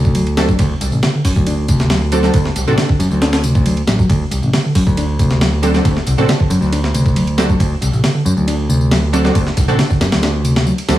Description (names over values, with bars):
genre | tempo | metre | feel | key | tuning
breakbeat, breaks | 137 BPM | 4/4 | straight | unclear | A4 = 441 Hz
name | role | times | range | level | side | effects
mellow reed electric piano | riff | 0.0-11.0 s | C3 to D4 | -17 LUFS | equal | tube saturation
modern bright picked electric bass | bass | 0.0-11.0 s | A1 to F#2 | -17 LUFS | equal | none
breakbeat sampler-style drum kit | drums | 0.0-11.0 s | hi-hat, kick drum, ride cymbal, snare drum | -18 LUFS | equal | studio reverb
tambourine | drums | 0.0-11.0 s | none | -31 LUFS | left 3 dB | studio reverb
orchestra-hit-like synth stab | stabs | 0.4-2.8, 5.6-11.0 s | C4 to A4 | -21 LUFS | right 2 dB | built-in reverb, dub echo
room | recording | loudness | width
little or no reverb | vinyl crackle, small room ambience | -12 LUFS | side -14 dB against mid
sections
0.0-11.0 A section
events
none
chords
0.0 D7